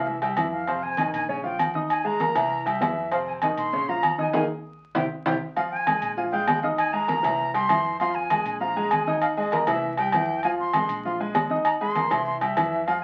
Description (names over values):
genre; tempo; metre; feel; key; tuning
latin, salsa; 197 BPM; 4/4; straight; F minor; A4 = 440 Hz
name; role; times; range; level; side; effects
breathy bright concert flute; melody; 0.0-13.0 s; Eb5-20c to C6; -30 LUFS; equal; none
clear upright piano; accompaniment; 0.0-13.0 s; C3 to Eb6; -30 LUFS; equal; none
hollow-body short-scale fingered electric bass; bass; 0.0-13.0 s; Bb1 to F2; -44 LUFS; equal; none
congas; percussion; 0.1-13.0 s; none; -37 LUFS; equal; none
agogo bells and timbales; percussion; 0.2-13.0 s; none; -28 LUFS; equal; none
room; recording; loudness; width
wet studio reverb, RT60 0.5 s; very old 78 rpm record, vinyl crackle, faint mains hum; -25 LUFS; mono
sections
0.0-5.6 A section; 5.6-13.0 A section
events
band accent 4.3-5.6; drum fill 4.6-5.6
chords
0.1 C; 0.7 Fm7; 1.3 Bbm; 1.9 Ebsus4; 2.5 C; 3.1 F5; 3.7 Bbm; 4.3 Ebsus4; 4.9 C; 5.6 Fm; 6.2 Bb5; 6.8 Ebsus4; 7.4 C; 8.0 Fm; 8.6 Bb5; 9.2 Ebsus4; 9.8 C; 10.4 Fm; 11.0 Bb5; 11.7 Ebsus4; 12.3 C